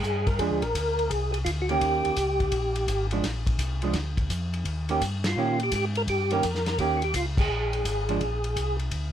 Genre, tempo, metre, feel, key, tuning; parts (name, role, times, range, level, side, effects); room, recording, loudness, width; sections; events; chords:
soul jazz organ trio; 169 BPM; 4/4; swing 66% on 8ths; Bb mixolydian; A4 = 438 Hz
percussive tonewheel organ; melody; 0.0-3.1, 5.3-8.8 s; F4 to Bb4; -28 LUFS; equal; slow rotary speaker, chorus vibrato
mellow tonewheel organ; bass; 0.0-9.1 s; Ab1 to Bb2; -29 LUFS; equal; chorus vibrato, slow rotary speaker
warm soul drum kit; drums; 0.0-9.0 s; crash cymbal, hi-hat, kick drum, ride cymbal, snare drum; -31 LUFS; left 1 dB
vintage hollow-body jazz guitar; accompaniment; 0.4-8.2 s; Eb3 to G4; -27 LUFS; right 5 dB
light reverb; close, detailed microphones; -24 LUFS; side -10 dB against mid
0.0-9.1 A section
band accent 5.2, 7.3
0.0 Bb7; 1.8 Eb7; 3.2 Bb; 4.7 Eb7; 7.5 Bb7(no3)